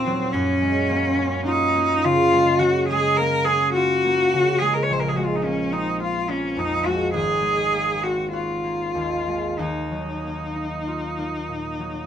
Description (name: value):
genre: classical, impressionist duo for cello and harp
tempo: 46-54 BPM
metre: 4/4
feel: rubato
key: unclear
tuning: A4 = 440 Hz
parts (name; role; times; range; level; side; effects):
- rich cello; melody; 0.0-12.1 s; C4 to Db5; -21 LUFS; equal; none
- concert harp; accompaniment; 0.0-12.1 s; Ab1 to Gb4; -25 LUFS; equal; none
room: light reverb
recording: none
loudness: -19 LUFS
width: side -9 dB against mid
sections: 0.0-12.1 A section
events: none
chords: 0.3 Gbmaj9; 4.9 Bbm9; 7.2 Ab9; 9.6 Ebmadd9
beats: | 0.35 1.47 2.61 3.75 | 4.89 6.01 7.15 8.34 | 9.59 10.87